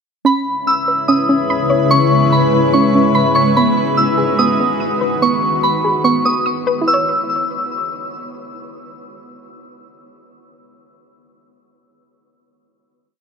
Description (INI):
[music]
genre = hip hop, atmospheric cloud-rap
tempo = 145 BPM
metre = 4/4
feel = half-time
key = C# minor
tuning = A4 = 441 Hz
[part]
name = soft round pluck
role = arpeggios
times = 0.2-11.7 s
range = B3 to D#6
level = -19 LUFS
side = right 1 dB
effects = chorus, ping-pong delay
[part]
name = soft synth bell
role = melody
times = 0.3-8.1 s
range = B5 to E6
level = -17 LUFS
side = equal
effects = chorus, ping-pong delay
[part]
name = granular cloud pad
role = sustained chords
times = 1.1-5.2 s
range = C#3 to B4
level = -18 LUFS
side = left 1 dB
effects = built-in reverb
[part]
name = drifting glass-harmonics texture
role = texture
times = 0.7-5.2 s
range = D#4 to B5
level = -25 LUFS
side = left 3 dB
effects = chorus, built-in reverb
[sound]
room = moderate huge ambient reverb, RT60 7.3 s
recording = none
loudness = -13 LUFS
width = side -6 dB against mid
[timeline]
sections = 0.3-6.9 breakdown; 6.9-10.2 final chord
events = none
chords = 0.3 C#m7; 3.6 B6; 6.9 C#m7